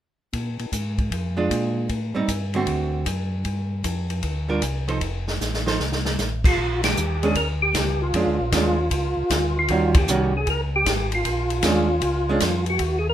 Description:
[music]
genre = soul jazz organ trio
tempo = 154 BPM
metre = 4/4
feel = swing 67% on 8ths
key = Bb mixolydian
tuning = A4 = 444 Hz
[part]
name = mellow tonewheel organ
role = bass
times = 0.3-13.1 s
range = F1 to Bb2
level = -26 LUFS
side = equal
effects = chorus vibrato, slow rotary speaker
[part]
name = open jazz drum kit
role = drums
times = 0.3-12.9 s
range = crash cymbal, hi-hat, kick drum, ride cymbal, snare drum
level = -25 LUFS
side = equal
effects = none
[part]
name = archtop guitar, miked and amplified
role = accompaniment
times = 1.4-12.4 s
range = D3 to C5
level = -24 LUFS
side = right 4 dB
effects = none
[part]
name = percussive tonewheel organ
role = melody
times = 6.5-13.1 s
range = F4 to Bb4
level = -23 LUFS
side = equal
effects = slow rotary speaker, chorus vibrato
[sound]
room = moderate studio reverb, RT60 0.6 s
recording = rough home demo mix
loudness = -20 LUFS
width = side -11 dB against mid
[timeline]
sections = 0.3-6.6 A section; 6.6-13.1 B section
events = drum fill 5.4-6.2; band accent 6.8, 9.9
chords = 0.3 Bb7; 1.9 Am7b5; 2.7 D7; 3.5 G7(no3); 5.0 F; 6.6 Bb7#9; 9.7 Eb7#9; 11.2 Bb7#9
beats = | 0.34 0.73 1.12 1.51 | 1.90 2.29 2.68 3.07 | 3.46 3.85 4.24 4.63 | 5.02 5.41 5.80 6.19 | 6.58 6.97 7.36 7.75 | 8.14 8.53 8.91 9.30 | 9.69 10.08 10.47 10.86 | 11.25 11.64 12.03 12.42 | 12.80

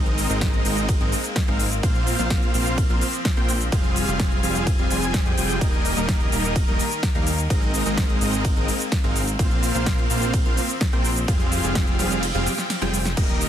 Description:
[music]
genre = EDM, festival progressive house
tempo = 127 BPM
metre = 4/4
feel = straight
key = unclear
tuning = A4 = 439 Hz
[part]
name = bright chamber string section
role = sustained chords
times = 0.0-13.5 s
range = Eb3 to Ab5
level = -31 LUFS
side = left 2 dB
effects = sidechain pumping
[part]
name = dense compressed supersaw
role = riff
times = 0.0-13.5 s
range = G3 to Ab5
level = -25 LUFS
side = right 1 dB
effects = cassette tape, sidechain pumping, digital delay
[part]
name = fat analog bass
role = bass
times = 0.0-13.5 s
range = Eb1 to F2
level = -27 LUFS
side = equal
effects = sidechain pumping
[part]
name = big-room dance drum kit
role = drums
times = 0.1-13.5 s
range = cabasa, crash cymbal, hi-hat, ride cymbal, snare drum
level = -28 LUFS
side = equal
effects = overdrive
[part]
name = electronic kick drum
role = drums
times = 0.4-13.3 s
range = none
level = -22 LUFS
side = equal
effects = overdrive
[sound]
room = light reverb, digital ambience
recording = dense, heavily limited modern master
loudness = -19 LUFS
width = side -10 dB against mid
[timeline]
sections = 0.0-13.5 A section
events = kick drops out 12.2-13.2; drum fill 12.5-13.2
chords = 0.0 Abadd9; 1.8 Bbsus2; 3.7 Fmadd9; 5.6 Eb; 7.5 Abadd9; 9.4 Bbsus2; 11.3 Fmadd9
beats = 0.42 0.89 1.36 | 1.83 2.31 2.78 3.25 | 3.72 4.20 4.67 5.14 | 5.61 6.08 6.56 7.03 | 7.50 7.97 8.45 8.92 | 9.39 9.87 10.34 10.81 | 11.28 11.75 12.23 12.70 | 13.17

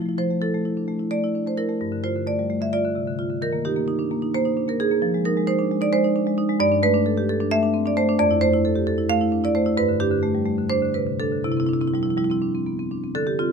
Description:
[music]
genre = classical, contemporary piece for solo marimba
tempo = 261 BPM (eighths)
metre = 7/8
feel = rubato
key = F major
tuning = A4 = 440 Hz
[part]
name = marimba with medium hard mallets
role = solo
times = 0.0-13.5 s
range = F2 to F5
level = -20 LUFS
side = right 1 dB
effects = none
[sound]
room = light reverb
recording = close, detailed microphones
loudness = -20 LUFS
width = side -6 dB against mid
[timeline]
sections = 0.2-13.1 A section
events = none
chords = 0.2 Fmaj7; 1.8 Gsus2; 3.4 Ebmaj7; 5.0 Fm7; 6.6 Gadd9; 8.2 Fmaj7; 9.8 Gsus2; 11.4 Cadd9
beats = | 0.19 0.42 0.66 0.89 1.12 1.35 1.58 | 1.82 2.05 2.28 2.50 2.73 2.96 3.19 | 3.42 3.65 3.88 4.11 4.33 4.56 4.79 | 5.02 5.25 5.47 5.70 5.92 6.15 6.38 | 6.60 6.82 7.05 7.28 7.50 7.73 7.96 | 8.19 8.41 8.64 8.86 9.10 9.33 9.56 | 9.78 10.01 10.24 10.47 10.71 10.95 11.19 | 11.44 11.69 11.93 12.18 12.42 12.66 12.91 | 13.15 13.38

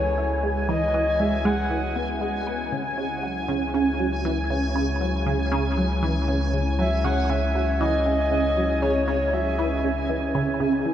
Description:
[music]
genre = ambient, sequencer-driven space music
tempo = 118 BPM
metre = 4/4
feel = straight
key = unclear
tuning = A4 = 440 Hz
[part]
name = breathy flute-like synth lead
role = melody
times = 0.0-2.0, 6.8-10.1 s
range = C#5 to F#5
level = -27 LUFS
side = equal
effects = chorus, tape echo
[part]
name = sweeping resonant pad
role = sustained chords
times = 0.0-10.9 s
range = C#3 to F#5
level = -32 LUFS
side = left 1 dB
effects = chorus
[part]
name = resonant blip pluck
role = riff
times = 0.0-10.9 s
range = C#3 to E4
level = -26 LUFS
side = right 2 dB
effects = phaser, tape echo
[part]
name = warm sub bass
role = bass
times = 0.0-10.9 s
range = C#2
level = -27 LUFS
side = left 1 dB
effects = none
[part]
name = bubbling stepped-filter texture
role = texture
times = 0.0-10.9 s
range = G#4 to G#5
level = -31 LUFS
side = equal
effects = chorus, built-in reverb
[sound]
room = wet huge ambient reverb, RT60 7.5 s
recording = in a vast, echoing space, small room ambience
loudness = -21 LUFS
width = side -10 dB against mid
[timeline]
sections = 0.0-10.9 A section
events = fade-in on analog synth pad 0.0-10.9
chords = 0.0 Eadd9/C#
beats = 0.18 | 0.69 1.20 1.71 2.21 | 2.72 3.23 3.74 4.25 | 4.76 5.26 5.77 6.28 | 6.79 7.30 7.81 8.32 | 8.82 9.33 9.84 10.35 | 10.86

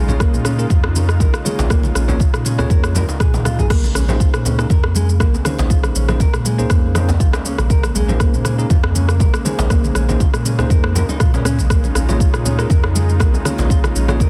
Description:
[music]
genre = afro house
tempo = 120 BPM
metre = 4/4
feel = swing 54% on 16ths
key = Bb minor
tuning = A4 = 440 Hz
[part]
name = warm analog pad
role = sustained chords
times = 0.0-14.3 s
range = Db3 to F4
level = -30 LUFS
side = equal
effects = chorus, sidechain pumping
[part]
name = nylon-string guitar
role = arpeggios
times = 0.0-14.3 s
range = Ab3 to Bb4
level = -29 LUFS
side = equal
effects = sidechain pumping, digital delay
[part]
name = warm sub bass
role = bass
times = 0.0-14.3 s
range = Bb1 to Bb2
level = -20 LUFS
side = equal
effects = sidechain pumping
[part]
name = bell-like tine electric piano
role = stabs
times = 0.1-14.2 s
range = Bb3 to Db5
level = -29 LUFS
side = equal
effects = sidechain pumping, digital delay
[part]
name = deep house drum kit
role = drums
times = 0.1-14.3 s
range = crash cymbal, rim click, shaker, toms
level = -26 LUFS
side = equal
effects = small room ambience
[part]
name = congas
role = percussion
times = 0.1-14.3 s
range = none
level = -27 LUFS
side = equal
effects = none
[part]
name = electronic kick drum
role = drums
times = 0.2-14.3 s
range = none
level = -17 LUFS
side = equal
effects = small room ambience
[part]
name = djembe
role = percussion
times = 0.3-14.3 s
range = none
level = -29 LUFS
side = equal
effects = none
[sound]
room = digital ambience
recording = dense, heavily limited modern master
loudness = -16 LUFS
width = mono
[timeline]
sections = 0.0-14.3 A section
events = drum fill 3.3-3.7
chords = 0.0 Db6/Bb; 3.7 Bbm11; 11.7 Db6/Bb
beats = 0.20 0.70 1.20 | 1.70 2.20 2.70 3.20 | 3.70 4.20 4.70 5.20 | 5.70 6.20 6.70 7.20 | 7.70 8.20 8.70 9.20 | 9.70 10.20 10.70 11.20 | 11.70 12.20 12.70 13.20 | 13.70 14.20

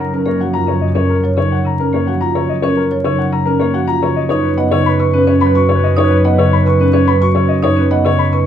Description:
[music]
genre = classical, minimalist pattern music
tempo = 108 BPM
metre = 3/4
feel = straight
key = F# major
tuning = A4 = 440 Hz
[part]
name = dark concert grand piano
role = melody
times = 0.0-8.5 s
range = A#4 to C#6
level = -18 LUFS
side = left 8 dB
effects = none
[part]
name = dark clarinet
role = second line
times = 0.0-0.7, 4.3-7.4 s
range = A#4 to B4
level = -22 LUFS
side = right 1 dB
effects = none
[part]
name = marimba with medium hard mallets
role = accompaniment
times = 0.0-8.5 s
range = C#3 to D#4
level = -18 LUFS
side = equal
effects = none
[part]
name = clear studio double bass section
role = bass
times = 0.0-8.5 s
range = F#2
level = -17 LUFS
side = equal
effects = none
[part]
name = marimba with soft mallets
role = arpeggios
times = 0.1-8.5 s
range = C#4 to D#5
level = -18 LUFS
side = right 6 dB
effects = none
[sound]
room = light reverb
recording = dark, warm production, vinyl crackle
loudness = -11 LUFS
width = side -9 dB against mid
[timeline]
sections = 0.0-8.5 A section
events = none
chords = 0.0 F#maj7; 4.3 B/F#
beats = 0.41 | 0.97 1.52 2.08 | 2.63 3.19 3.75 | 4.30 4.86 5.41 | 5.97 6.52 7.08 | 7.63 8.19

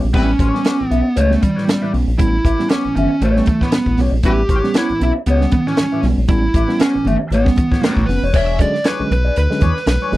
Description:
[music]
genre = funk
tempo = 117 BPM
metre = 4/4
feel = swing 56% on 16ths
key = unclear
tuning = A4 = 441 Hz
[part]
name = mellow electric guitar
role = accompaniment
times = 0.0-10.2 s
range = D4 to E5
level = -24 LUFS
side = left 4 dB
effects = wah
[part]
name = tine electric piano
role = stabs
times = 0.0-10.2 s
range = A2 to C#4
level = -22 LUFS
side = right 2 dB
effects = overdrive, fast stereo tremolo
[part]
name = round analog bass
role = bass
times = 0.0-10.2 s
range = E1 to E2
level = -17 LUFS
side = equal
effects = none
[part]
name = fuzz lead guitar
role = melody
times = 0.1-10.2 s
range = G3 to E5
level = -19 LUFS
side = right 1 dB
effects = distortion
[part]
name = warm horn section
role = second line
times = 0.1-0.3, 4.2-4.4 s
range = G3 to B4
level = -22 LUFS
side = left 3 dB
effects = none
[part]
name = compact cocktail drum kit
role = drums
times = 0.1-10.2 s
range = crash cymbal, hi-hat, kick drum, snare drum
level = -18 LUFS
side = equal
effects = none
[part]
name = congas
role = percussion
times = 0.1-10.2 s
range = none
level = -27 LUFS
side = right 4 dB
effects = none
[sound]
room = little or no reverb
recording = dry, close 1970s-style studio recording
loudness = -13 LUFS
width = side -16 dB against mid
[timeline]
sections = 0.1-8.3 A section; 8.3-10.2 B section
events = none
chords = 0.1 A9; 8.3 E13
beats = | 0.15 0.66 1.17 1.68 | 2.19 2.70 3.21 3.73 | 4.24 4.75 5.26 5.77 | 6.28 6.80 7.31 7.82 | 8.33 8.84 9.35 9.86

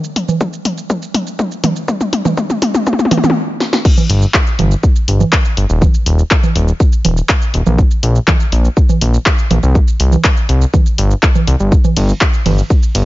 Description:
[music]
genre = melodic techno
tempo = 122 BPM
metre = 4/4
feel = straight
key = unclear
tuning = A4 = 441 Hz
[part]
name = punchy analog drum machine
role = drums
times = 0.0-13.0 s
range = congas, crash cymbal, handclaps, hi-hat, ride cymbal, shaker, snare drum, toms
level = -15 LUFS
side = right 1 dB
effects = overdrive
[part]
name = electronic kick drum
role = drums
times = 0.4-12.8 s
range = none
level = -12 LUFS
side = equal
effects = high-pass filter on kick
[part]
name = fat analog bass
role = bass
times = 4.1-13.1 s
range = Eb1 to C2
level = -12 LUFS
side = equal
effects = sidechain pumping
[sound]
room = digital ambience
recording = nothing above 7.5 kHz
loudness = -11 LUFS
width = side -17 dB against mid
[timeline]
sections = 0.0-3.9 A section; 3.9-13.1 B section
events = build-up 0.0-3.9; drum fill 0.0-3.4, 3.6; stop 3.4-3.9; drop 3.9-13.1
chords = none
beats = 0.41 0.90 1.39 | 1.88 2.38 2.87 3.36 | 3.85 4.34 4.83 5.33 | 5.82 6.31 6.80 7.29 | 7.79 8.28 8.77 9.26 | 9.75 10.24 10.74 11.23 | 11.72 12.21 12.70

